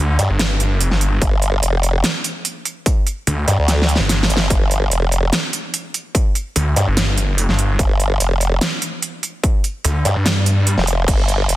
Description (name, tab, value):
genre	heavy wobble dubstep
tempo	146 BPM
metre	4/4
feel	half-time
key	unclear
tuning	A4 = 439 Hz
part	snarling distorted saw bass	bass	0.0-10.8 s	G1 to G2	-16 LUFS	equal	distortion, overdrive
part	formant-sweep wobble bass	bass	0.2-11.6 s	F1 to G2	-16 LUFS	equal	chorus, overdrive
part	big-room dance drum kit	drums	0.2-11.6 s	crash cymbal, hi-hat, snare drum	-20 LUFS	right 1 dB	none
part	electronic kick drum	drums	1.2-11.2 s	none	-16 LUFS	equal	distortion
room	digital ambience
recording	dense, heavily limited modern master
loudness	-15 LUFS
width	side -15 dB against mid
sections	0.0-11.6 A section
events	drum fill 3.7-4.5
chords	0.0 G5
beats	0.40 0.81 | 1.22 1.63 2.04 2.45 | 2.86 3.27 3.68 4.09 | 4.50 4.92 5.33 5.74 | 6.15 6.56 6.97 7.38 | 7.79 8.20 8.61 9.03 | 9.44 9.85 10.26 10.67 | 11.08 11.49